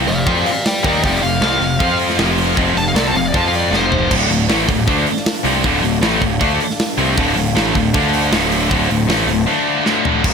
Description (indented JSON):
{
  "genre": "heavy metal",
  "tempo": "156 BPM",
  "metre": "4/4",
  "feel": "straight",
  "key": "D phrygian",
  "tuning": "A4 = 440 Hz",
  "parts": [
    { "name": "dark studio string section", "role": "sustained chords", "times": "0.0-10.3 s", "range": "Eb3 to F5", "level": "-28 LUFS", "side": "equal", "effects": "none" },
    { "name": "heavy high-gain guitar", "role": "riff", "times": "0.0-10.3 s", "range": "D2 to F4", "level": "-19 LUFS", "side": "left 15 dB", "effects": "distortion" },
    { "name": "scooped high-gain guitar", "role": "riff", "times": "0.0-10.2 s", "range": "D2 to F4", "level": "-19 LUFS", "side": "right 12 dB", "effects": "distortion" },
    { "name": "fuzz picked electric bass", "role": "bass", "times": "0.0-10.3 s", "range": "D1 to F2", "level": "-20 LUFS", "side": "right 1 dB", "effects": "overdrive" },
    { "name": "high-gain lead guitar", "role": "melody", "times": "0.1-4.1 s", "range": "C5 to A5", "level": "-21 LUFS", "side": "left 1 dB", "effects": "distortion, ping-pong delay" },
    { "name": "tight metal drum kit", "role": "drums", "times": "0.1-10.3 s", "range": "crash cymbal, hi-hat, kick drum, snare drum, toms", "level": "-20 LUFS", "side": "right 1 dB", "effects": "none" }
  ],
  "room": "little or no reverb",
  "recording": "none",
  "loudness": "-13 LUFS",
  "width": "side -6 dB against mid",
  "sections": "0.0-4.1 A section; 4.1-10.2 B section",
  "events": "lead electric guitar solo 0.0-4.1; drum fill 3.7-4.1, 9.9-10.2",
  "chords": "0.0 F5; 4.1 Dm",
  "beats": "0.26 0.65 | 1.03 1.41 1.80 2.18 | 2.57 2.95 3.33 3.72 | 4.10 4.49 4.87 5.25 | 5.64 6.02 6.41 6.79 | 7.17 7.56 7.94 8.32 | 8.71 9.09 9.47 9.86 | 10.24"
}